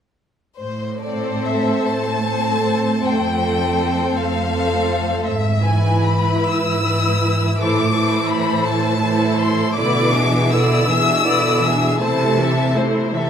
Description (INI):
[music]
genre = classical, slow romantic movement for symphony orchestra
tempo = 46-57 BPM (dotted quarters)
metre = 6/8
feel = rubato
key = A minor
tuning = A4 = 440 Hz
[part]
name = rich chamber violin section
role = melody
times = 0.6-12.7 s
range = C5 to E6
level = -22 LUFS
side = left 4 dB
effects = none
[part]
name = rich chamber cello section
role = bass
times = 0.6-13.3 s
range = F2 to C3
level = -21 LUFS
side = right 2 dB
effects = none
[part]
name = rich chamber violin section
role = second line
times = 1.0-13.3 s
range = G#4 to E5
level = -24 LUFS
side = left 3 dB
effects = none
[part]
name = warm studio viola section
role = accompaniment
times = 1.0-13.3 s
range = D3 to E4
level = -21 LUFS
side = right 2 dB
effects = none
[sound]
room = wet recital hall reverb, RT60 1.7 s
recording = lossy compression artefacts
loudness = -16 LUFS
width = side -8 dB against mid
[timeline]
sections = 0.6-13.3 A section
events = none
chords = 0.6 Am; 3.0 F; 5.3 E/G#; 7.6 Am; 9.8 E7/B; 12.0 Am/C